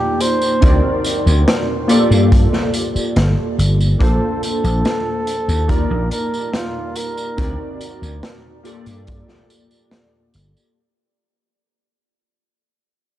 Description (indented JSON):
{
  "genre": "vaporwave",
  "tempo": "71 BPM",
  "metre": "4/4",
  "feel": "straight",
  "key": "unclear",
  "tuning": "A4 = 440 Hz",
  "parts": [
    { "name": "breathy flugelhorn", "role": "melody", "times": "0.0-7.8 s", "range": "F4 to C5", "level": "-23 LUFS", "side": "equal", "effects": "tape echo" },
    { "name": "warbly lo-fi synth keys", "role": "accompaniment", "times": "0.0-10.8 s", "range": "Bb3 to D5", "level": "-20 LUFS", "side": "equal", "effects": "lush chorus" },
    { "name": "raw garage drum kit", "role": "drums", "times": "0.2-10.7 s", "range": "hi-hat, snare drum, tambourine", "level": "-23 LUFS", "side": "equal", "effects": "none" },
    { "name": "vintage slap bass", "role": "bass", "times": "0.6-10.5 s", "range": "G1 to G2", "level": "-15 LUFS", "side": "equal", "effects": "tube saturation" },
    { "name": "kick drum", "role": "drums", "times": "0.6-9.2 s", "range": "none", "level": "-17 LUFS", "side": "equal", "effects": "none" }
  ],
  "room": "small room ambience",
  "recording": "dark, warm production",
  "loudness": "-14 LUFS",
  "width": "side -13 dB against mid",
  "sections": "0.0-10.8 A section",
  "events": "fade-out 1.8-10.8",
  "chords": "0.0 Ebmaj9; 0.6 D7b9b13; 1.9 Gm9; 4.0 Bbmaj9; 5.7 Ebmaj9; 7.4 D7b9b13; 8.7 Gm9"
}